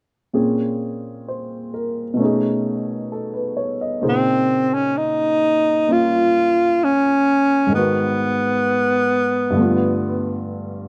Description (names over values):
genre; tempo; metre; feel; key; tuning
jazz ballad; 65 BPM; 4/4; swing 68% on 8ths; Bb minor; A4 = 440 Hz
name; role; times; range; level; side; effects
warm baby grand piano; accompaniment; 0.3-10.9 s; G2 to D#5; -24 LUFS; equal; none
clear alto saxophone; melody; 4.1-10.4 s; Cb4 to F4; -19 LUFS; equal; none
room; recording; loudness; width
light reverb; dark, warm production; -19 LUFS; mono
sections
0.4-4.0 A section; 4.0-10.9 B section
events
none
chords
0.4 Bbm9; 2.2 B13; 4.0 Bbm11; 7.7 Abm7; 9.6 G9